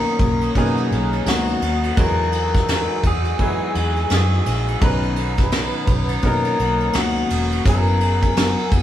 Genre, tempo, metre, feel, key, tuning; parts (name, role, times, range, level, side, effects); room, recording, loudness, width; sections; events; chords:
indie pop, bedroom pop; 84 BPM; 4/4; swing 60% on 16ths; B major; A4 = 438 Hz
electric guitar through a small old amp; melody; 0.0-8.7 s; F#4 to B4; -24 LUFS; left 2 dB
bright upright piano; accompaniment; 0.0-8.8 s; F#3 to A#5; -27 LUFS; right 1 dB
clean electric guitar; accompaniment; 0.0-8.8 s; B2 to G#4; -26 LUFS; left 2 dB; warbly pitch drift
warbly tape-like pad; sustained chords; 0.0-8.8 s; B3 to E6; -30 LUFS; left 1 dB; chorus, built-in reverb
vintage muted fingered electric bass; bass; 0.2-8.8 s; E1 to E3; -22 LUFS; equal
soft brush drum kit; drums; 0.2-8.8 s; hi-hat, kick drum, ride cymbal, snare drum; -21 LUFS; equal
moderate stone room reverb, RT60 0.9 s; band playing live in one room, vinyl crackle; -16 LUFS; side -11 dB against mid
0.0-8.8 A section
0.0 Bmaj9; 2.0 Emaj9; 4.8 Bmaj9; 7.7 F#9sus4